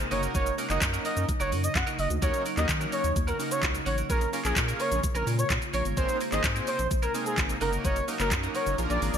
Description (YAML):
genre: dance-pop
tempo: 128 BPM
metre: 4/4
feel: straight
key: unclear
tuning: A4 = 439 Hz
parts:
  - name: big bright polysynth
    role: accompaniment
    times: 0.0-9.2 s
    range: Bb3 to C5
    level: -34 LUFS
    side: right 1 dB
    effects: chorus, sidechain pumping
  - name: glassy FM pad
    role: sustained chords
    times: 0.0-9.2 s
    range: C3 to F4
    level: -37 LUFS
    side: equal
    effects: ensemble chorus, built-in reverb, sidechain pumping
  - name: twelve-string electric guitar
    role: riff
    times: 0.0-9.2 s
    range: C4 to Bb4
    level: -38 LUFS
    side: right 5 dB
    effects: lush chorus
  - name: round analog bass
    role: bass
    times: 0.0-9.2 s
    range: Gb1 to Eb3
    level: -31 LUFS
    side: equal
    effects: sidechain pumping
  - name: smooth R&B drum kit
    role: drums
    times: 0.0-9.2 s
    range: handclaps, hi-hat, kick drum, shaker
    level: -30 LUFS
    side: equal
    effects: gated reverb
  - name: expressive portamento lead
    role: melody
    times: 0.1-9.2 s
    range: Ab4 to Gb5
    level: -30 LUFS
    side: equal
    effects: chorus, ping-pong delay
room: light reverb, digital ambience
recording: bright 1980s-style digital production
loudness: -25 LUFS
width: side -8 dB against mid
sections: 0.0-9.2 A section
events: kick muted 8.8-9.2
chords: 0.1 Gb6; 2.2 Ebm7; 4.1 Bbm7; 6.0 Abadd9; 7.6 Gb6